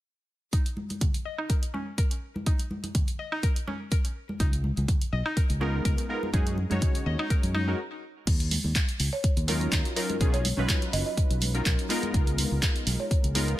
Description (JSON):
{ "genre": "deep house", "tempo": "124 BPM", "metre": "4/4", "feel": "swing 54% on 16ths", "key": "Eb minor", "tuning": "A4 = 440 Hz", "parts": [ { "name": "mallet-like synth pluck", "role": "arpeggios", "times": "0.5-7.6 s", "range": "Db4 to Eb5", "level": "-35 LUFS", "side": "left 1 dB", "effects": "chorus, sidechain pumping, digital delay" }, { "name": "electronic kick drum", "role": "drums", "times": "0.5-13.2 s", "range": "none", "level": "-25 LUFS", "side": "equal", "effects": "none" }, { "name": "punchy analog drum machine", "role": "drums", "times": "0.5-13.6 s", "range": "crash cymbal, handclaps, hi-hat", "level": "-31 LUFS", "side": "right 1 dB", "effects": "none" }, { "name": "congas", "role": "percussion", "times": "0.8-13.5 s", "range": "none", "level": "-37 LUFS", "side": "equal", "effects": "none" }, { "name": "fingered electric bass", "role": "bass", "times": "4.4-13.5 s", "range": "F#1 to Gb2", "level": "-28 LUFS", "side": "equal", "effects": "sidechain pumping" }, { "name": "warm analog keys", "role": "stabs", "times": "5.6-13.6 s", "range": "Gb3 to Db5", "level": "-31 LUFS", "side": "equal", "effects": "chorus, sidechain pumping, ping-pong delay" }, { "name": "buzzing marimba with medium mallets", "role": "melody", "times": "9.1-13.1 s", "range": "A#4 to D#5", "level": "-35 LUFS", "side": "equal", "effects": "digital delay" } ], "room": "little or no reverb", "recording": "none", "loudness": "-25 LUFS", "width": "side -15 dB against mid", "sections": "0.5-8.3 A section; 8.3-13.6 B section", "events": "filter sweep on synth arpeggio sound 0.5-8.3; stop 7.8-8.3", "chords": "0.5 Eb5; 4.2 Db13; 6.3 Gb5; 8.3 Ebm9; 10.0 Bmaj9#11; 11.9 Db13" }